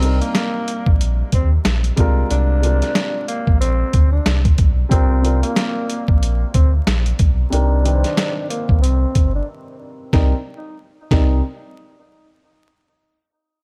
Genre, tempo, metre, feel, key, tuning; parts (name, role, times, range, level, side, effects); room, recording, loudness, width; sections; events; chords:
hip hop, boom-bap hip-hop; 92 BPM; 4/4; swing 59% on 16ths; C minor; A4 = 440 Hz
growling tenor saxophone; melody; 0.0-11.4 s; Bb3 to Eb4; -28 LUFS; equal; high-pass filter, low-pass filter, delay
dark upright piano; accompaniment; 0.0-11.4 s; C3 to D5; -28 LUFS; equal; cassette tape, high-pass filter, low-pass filter
sub bass with octave; bass; 0.0-11.4 s; G1 to Eb2; -19 LUFS; equal
boom bap sampler-style drum kit; drums; 0.0-11.3 s; hi-hat, kick drum, snare drum; -19 LUFS; equal
little or no reverb; dark, warm production, vinyl crackle; -17 LUFS; mono
0.0-10.1 A section; 10.1-12.7 B section
filter sweep 0.0-10.1; break 9.5-10.1
0.0 Cm7; 2.0 Bb7/C; 4.9 Bb69; 7.5 Gmadd11; 10.1 Cm7